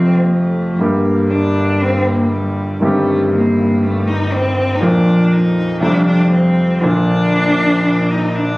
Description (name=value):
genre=tango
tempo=119 BPM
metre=4/4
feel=rubato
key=Bb major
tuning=A4 = 440 Hz
part: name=warm cello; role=second line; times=0.0-8.6 s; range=G3 to Eb4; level=-18 LUFS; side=left 1 dB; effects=none
part: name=clear concert grand piano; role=accompaniment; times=0.0-8.6 s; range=G1 to G4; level=-15 LUFS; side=equal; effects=none
part: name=clear double bass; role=bass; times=0.0-8.6 s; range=G1 to F2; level=-20 LUFS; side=equal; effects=none
room=wet club reverb, RT60 0.8 s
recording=recorded on a phone in the room, studio reverb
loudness=-12 LUFS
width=side -21 dB against mid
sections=0.0-8.6 A section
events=cello solo 0.0-8.6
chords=0.0 F; 0.8 Gm; 2.8 Cm/G; 4.8 Bb/F; 5.8 Fadd9; 6.8 Bb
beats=0.30 | 0.81 1.31 1.81 2.32 | 2.82 3.32 3.82 4.32 | 4.82 5.32 5.82 6.32 | 6.83 7.33 7.84 8.35